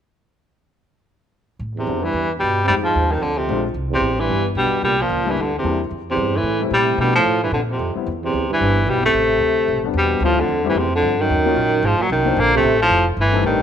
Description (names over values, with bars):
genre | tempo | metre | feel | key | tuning
jazz, small-group swing and bop | 223 BPM | 4/4 | swing 58% on 8ths | A minor, D minor from 10.2 s | A4 = 440 Hz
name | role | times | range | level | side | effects
upright bass | bass | 1.6-13.6 s | F1 to B2 | -24 LUFS | equal | none
breathy baritone saxophone | melody | 1.8-13.6 s | C3 to Bb3 | -18 LUFS | left 1 dB | none
breathy trombone | second line | 1.8-13.6 s | E2 to D3 | -24 LUFS | right 8 dB | tape echo
warm concert grand piano | accompaniment | 1.9-13.6 s | F3 to B#4 | -25 LUFS | left 10 dB | none
room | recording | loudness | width
moderate echo chamber reverb, RT60 1.3 s, studio reverb | 1960s-style stereo with parts hard left and right | -16 LUFS | side -8 dB against mid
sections
1.6-10.2 A section; 10.2-13.6 B section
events
none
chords
1.6 Am11; 2.7 Fm7; 3.2 Bb9; 3.8 Cmaj7; 4.8 C7; 5.9 Fmaj7; 7.0 Bm7b5; 7.5 Bbsus2; 8.1 Am11; 10.2 Dm11; 11.3 Ebm7; 11.8 G#9; 12.4 Bbmaj9